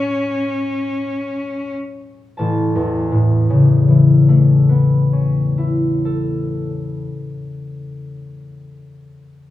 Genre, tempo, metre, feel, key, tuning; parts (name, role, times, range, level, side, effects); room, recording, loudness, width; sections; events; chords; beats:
classical, impressionist duo for cello and harp; 44-50 BPM; 4/4; rubato; A major; A4 = 440 Hz
clear cello; melody; 0.0-1.7 s; C#4; -21 LUFS; left 1 dB
concert harp; accompaniment; 0.0-8.8 s; A1 to A5; -14 LUFS; left 2 dB
wet recital hall reverb, RT60 1.4 s; worn, warbling old tape, cassette tape, warbly pitch drift; -14 LUFS; side -14 dB against mid
0.0-2.4 A section; 2.4-7.4 B section
slowing down 0.0-2.4
0.0 Amaj9; 2.4 Aadd9
1.06 | 2.38 3.62 4.83 6.07